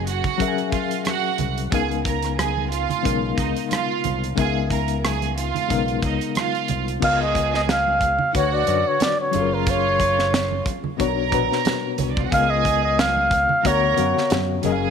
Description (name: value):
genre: lush 1970s-style soul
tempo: 91 BPM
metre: 4/4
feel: swing 54% on 16ths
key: unclear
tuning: A4 = 441 Hz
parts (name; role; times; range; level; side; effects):
- reed electric piano; accompaniment; 0.0-14.9 s; B2 to G#5; -25 LUFS; left 11 dB; overdrive, fast tremolo
- modern bright fingered electric bass; bass; 0.0-14.9 s; F#1 to F#2; -26 LUFS; equal; none
- clear studio string section; second line; 0.1-14.9 s; C#4 to A#5; -26 LUFS; right 12 dB; none
- modern studio drum kit; drums; 0.1-14.8 s; crash cymbal, hi-hat, kick drum, rim click, snare drum; -26 LUFS; right 1 dB; none
- congas; percussion; 0.2-14.8 s; none; -32 LUFS; right 10 dB; none
- breathy flugelhorn; melody; 7.0-14.6 s; A#4 to E#5; -20 LUFS; equal; none
room: light reverb, studio ambience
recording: 1960s-style stereo with parts hard left and right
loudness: -19 LUFS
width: side -7 dB against mid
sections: 0.0-7.0 A section; 7.0-14.9 B section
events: none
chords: 0.0 F#maj9; 1.7 C#13; 8.3 Bmadd9/D; 9.3 F#maj9; 11.0 Bmadd9; 12.3 C#13; 13.6 Bmadd9/D